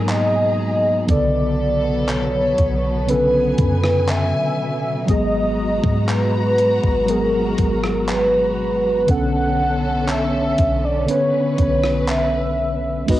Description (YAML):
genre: contemporary R&B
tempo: 60 BPM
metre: 4/4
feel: straight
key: unclear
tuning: A4 = 440 Hz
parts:
  - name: warm velvety synth lead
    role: melody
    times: 0.0-13.2 s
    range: A#4 to F#5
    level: -20 LUFS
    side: equal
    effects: chorus, cassette tape
  - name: mellow tine electric piano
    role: accompaniment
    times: 0.0-13.2 s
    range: C#3 to B4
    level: -22 LUFS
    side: equal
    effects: medium stereo tremolo, cassette tape
  - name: warm studio string section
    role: sustained chords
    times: 0.0-13.1 s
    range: B2 to A#5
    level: -27 LUFS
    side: equal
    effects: cassette tape
  - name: clean 808-style bass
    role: bass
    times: 0.0-13.2 s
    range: G#1 to D3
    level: -24 LUFS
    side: equal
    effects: none
  - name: downlifter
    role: sound effects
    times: 0.1-5.1 s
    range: none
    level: barely audible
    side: none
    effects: none
  - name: gated 80s digital drum machine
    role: drums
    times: 0.1-13.2 s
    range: crash cymbal, handclaps, hi-hat, kick drum, rim click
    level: -23 LUFS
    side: equal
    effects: gated reverb
room: light reverb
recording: home recording on cassette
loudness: -16 LUFS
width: side -14 dB against mid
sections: 0.0-13.1 A section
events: none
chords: 0.0 G#m9; 1.1 Bm9; 5.1 G#m9; 9.1 Bm9